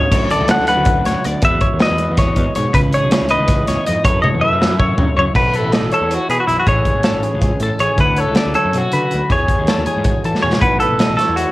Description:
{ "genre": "math rock and midwest emo", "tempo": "320 BPM (eighths)", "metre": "7/8", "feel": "straight", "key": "E major", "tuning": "A4 = 440 Hz", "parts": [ { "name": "semi-hollow electric guitar", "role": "melody", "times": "0.0-11.5 s", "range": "E4 to F#5", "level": "-18 LUFS", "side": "equal", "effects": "cassette tape" }, { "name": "mellow electric guitar", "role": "accompaniment", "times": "0.0-11.5 s", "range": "E2 to A4", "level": "-23 LUFS", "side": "right 2 dB", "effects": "cassette tape" }, { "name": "twelve-string electric guitar", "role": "arpeggios", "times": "0.0-11.5 s", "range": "G#4 to F#5", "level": "-22 LUFS", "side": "left 3 dB", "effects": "cassette tape" }, { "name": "fuzz picked electric bass", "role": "bass", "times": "0.0-11.4 s", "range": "G#1 to E3", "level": "-22 LUFS", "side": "equal", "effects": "overdrive" }, { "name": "modern studio drum kit", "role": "drums", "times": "0.1-11.5 s", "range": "crash cymbal, hi-hat, kick drum, snare drum, toms", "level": "-18 LUFS", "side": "equal", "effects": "cassette tape" } ], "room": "light reverb", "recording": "home recording on cassette", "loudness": "-13 LUFS", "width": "side -18 dB against mid", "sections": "0.0-5.4 A section; 5.4-11.5 B section", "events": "drum fill 4.2-5.4, 10.3", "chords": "0.1 Dmaj9; 1.4 Emaj9; 2.7 C#m9; 4.1 F#m9; 5.4 B7sus4; 6.7 Amaj7; 8.0 Dmaj9; 9.3 Emaj9; 10.6 B7sus4" }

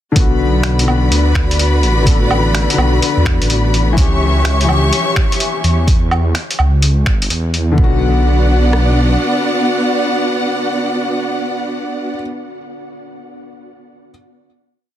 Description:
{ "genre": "future garage", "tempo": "126 BPM", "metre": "4/4", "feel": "swing 66% on 16ths", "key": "B minor", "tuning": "A4 = 440 Hz", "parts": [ { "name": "felt-muted upright piano", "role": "accompaniment", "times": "0.1-14.1 s", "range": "D3 to A4", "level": "-21 LUFS", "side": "left 5 dB", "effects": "sidechain pumping, low-pass filter, tape echo" }, { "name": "warm symphonic string section", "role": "sustained chords", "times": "0.2-12.2 s", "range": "B3 to C#6", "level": "-18 LUFS", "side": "equal", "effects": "sidechain pumping" }, { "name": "swelling detuned saw bass", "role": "bass", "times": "0.2-9.2 s", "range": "G1 to E2", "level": "-14 LUFS", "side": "equal", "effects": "none" }, { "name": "lo-fi sampler-style drum kit", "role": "drums", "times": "0.2-7.7 s", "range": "finger snaps, hi-hat, woodblock", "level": "-20 LUFS", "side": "equal", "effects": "overdrive, small room ambience, soft clipping on snare" }, { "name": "organic electronic drum kit", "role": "drums", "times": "0.2-8.9 s", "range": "kick drum, rim click", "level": "-14 LUFS", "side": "equal", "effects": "small room ambience, soft clipping on snare" } ], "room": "light reverb", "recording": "dense, heavily limited modern master", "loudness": "-12 LUFS", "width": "side -12 dB against mid", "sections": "0.2-7.8 groove; 7.8-11.6 final chord", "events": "none", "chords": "0.2 Bm; 4.0 C#dim; 7.8 Bm" }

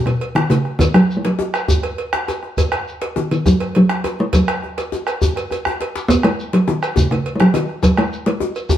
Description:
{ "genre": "west african traditional, West African drum ensemble", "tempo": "136 BPM (dotted quarters)", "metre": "12/8", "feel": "straight", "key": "unclear", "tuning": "A4 = 437 Hz", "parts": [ { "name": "talking drum", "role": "melody", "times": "0.0-8.8 s", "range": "B2 to B3", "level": "-16 LUFS", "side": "equal", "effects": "none" }, { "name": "bombo", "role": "percussion", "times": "0.1-8.8 s", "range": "none", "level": "-20 LUFS", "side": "right 1 dB", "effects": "none" }, { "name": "cowbell", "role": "percussion", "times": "0.1-8.7 s", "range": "none", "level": "-26 LUFS", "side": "right 3 dB", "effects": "none" }, { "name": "djembe", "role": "percussion", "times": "0.4-8.8 s", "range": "none", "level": "-24 LUFS", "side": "left 3 dB", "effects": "none" }, { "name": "shekere", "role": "percussion", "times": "0.5-8.8 s", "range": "none", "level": "-27 LUFS", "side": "left 2 dB", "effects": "none" } ], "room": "moderate stone room reverb, RT60 1.1 s", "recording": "band playing live in one room", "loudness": "-15 LUFS", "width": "side -11 dB against mid", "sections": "0.0-8.8 A section", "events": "drum fill 5.5-6.1", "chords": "none" }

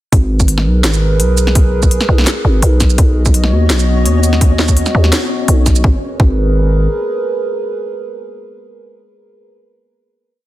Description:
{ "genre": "half-time drum and bass", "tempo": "168 BPM", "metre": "4/4", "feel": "swing 53% on 16ths, half-time", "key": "G# minor", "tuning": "A4 = 441 Hz", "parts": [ { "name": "dark analog pad", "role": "sustained chords", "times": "0.3-9.5 s", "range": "B3 to D#5", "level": "-20 LUFS", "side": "equal", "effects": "chorus, sidechain pumping" }, { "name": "growling 808-style bass", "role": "bass", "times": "0.1-6.9 s", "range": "G#1 to D#2", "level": "-12 LUFS", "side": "equal", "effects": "tube saturation" }, { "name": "drum and bass drum kit", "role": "drums", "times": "0.1-5.8 s", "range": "hi-hat, shaker, snare drum", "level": "-17 LUFS", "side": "equal", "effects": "studio reverb" }, { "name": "electronic kick drum", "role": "drums", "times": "0.1-6.3 s", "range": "none", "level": "-11 LUFS", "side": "equal", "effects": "studio reverb" }, { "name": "flickering grainy texture", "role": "texture", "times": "3.5-5.8 s", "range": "C#4 to C#5", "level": "-25 LUFS", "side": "left 1 dB", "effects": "built-in reverb" } ], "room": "digital ambience", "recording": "dense, heavily limited modern master", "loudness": "-10 LUFS", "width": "side -15 dB against mid", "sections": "0.1-5.8 drop; 5.8-8.7 final chord", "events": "drop 0.1-5.8", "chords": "0.1 G#madd9; 3.0 B; 5.8 G#madd9" }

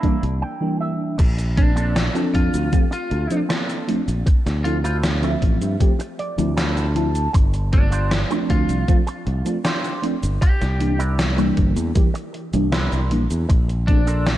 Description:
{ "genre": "vaporwave", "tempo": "78 BPM", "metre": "4/4", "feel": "straight", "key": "unclear", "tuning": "A4 = 441 Hz", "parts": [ { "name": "mellow FM electric piano", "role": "accompaniment", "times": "0.0-14.0 s", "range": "E3 to E5", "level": "-24 LUFS", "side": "right 1 dB", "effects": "phaser, ensemble chorus, analog delay" }, { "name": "electric guitar with an envelope filter", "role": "riff", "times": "0.0-14.3 s", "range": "Bb3 to A5", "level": "-31 LUFS", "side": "right 3 dB", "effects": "analog chorus, vintage 12-bit sampler grit, analog delay" }, { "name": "electronic kick drum", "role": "drums", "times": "0.0-14.0 s", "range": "none", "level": "-17 LUFS", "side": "equal", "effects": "none" }, { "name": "gated 80s digital drum machine", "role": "drums", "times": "0.0-14.4 s", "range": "cabasa, crash cymbal, hi-hat, snare drum", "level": "-26 LUFS", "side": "equal", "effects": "gated reverb, gated reverb snare" }, { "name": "modern bright fingered electric bass", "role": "bass", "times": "0.2-14.4 s", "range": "G1 to G2", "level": "-21 LUFS", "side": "equal", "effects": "tube saturation" }, { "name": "lightly driven lead guitar", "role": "melody", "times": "1.6-14.3 s", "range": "D4 to G4", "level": "-30 LUFS", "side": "equal", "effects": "vintage 12-bit sampler grit, tape echo" } ], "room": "little or no reverb", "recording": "none", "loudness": "-18 LUFS", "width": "side -14 dB against mid", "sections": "0.0-1.2 A section; 1.2-14.4 B section", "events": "clean electric guitar fill 0.0-1.2, 5.8-7.3; break 0.4-1.2", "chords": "0.0 C9; 1.2 Bbmaj9; 4.3 Dm9; 7.3 G7sus4; 10.4 C9; 13.5 Bbmaj9" }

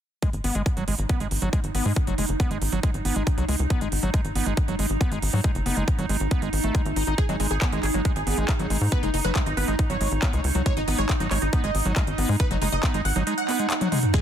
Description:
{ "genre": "psychedelic trance", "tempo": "138 BPM", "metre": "4/4", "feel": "straight", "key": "G# minor", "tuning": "A4 = 439 Hz", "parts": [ { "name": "evolving wavetable pad", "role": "sustained chords", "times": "1.0-14.2 s", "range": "D#4", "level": "-31 LUFS", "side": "right 2 dB", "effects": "chorus, built-in reverb, sidechain pumping" }, { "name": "overdriven acid bass", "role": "riff", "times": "0.2-14.2 s", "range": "F#3 to D#4", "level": "-30 LUFS", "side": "moving between left 7 dB and right 6 dB", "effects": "distortion, auto-pan, sidechain pumping, dub echo" }, { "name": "big-room dance drum kit", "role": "drums", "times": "0.2-14.2 s", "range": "handclaps, hi-hat, toms", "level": "-30 LUFS", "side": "right 1 dB", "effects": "small room ambience" }, { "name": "electronic kick drum", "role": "drums", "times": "0.2-14.2 s", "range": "none", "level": "-24 LUFS", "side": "equal", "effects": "small room ambience" }, { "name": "tight sequencer bass", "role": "bass", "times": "0.3-13.2 s", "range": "F#1 to G#2", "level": "-26 LUFS", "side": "equal", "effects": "none" }, { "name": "supersaw stab", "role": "melody", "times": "7.2-14.2 s", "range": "G#3 to F#5", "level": "-30 LUFS", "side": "right 1 dB", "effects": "phaser, vintage 12-bit sampler grit, sidechain pumping, tape echo" }, { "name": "shekere", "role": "percussion", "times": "14.1-14.2 s", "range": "none", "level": "-38 LUFS", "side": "left 6 dB", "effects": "none" }, { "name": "impact", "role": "sound effects", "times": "14.1-14.2 s", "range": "none", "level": "-24 LUFS", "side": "equal", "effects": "none" } ], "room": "little or no reverb", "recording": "dense, heavily limited modern master", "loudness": "-22 LUFS", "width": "side -9 dB against mid", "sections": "0.2-14.1 A section", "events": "kick drops out 13.3-14.1; drum fill 13.8-14.1", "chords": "0.2 G#5" }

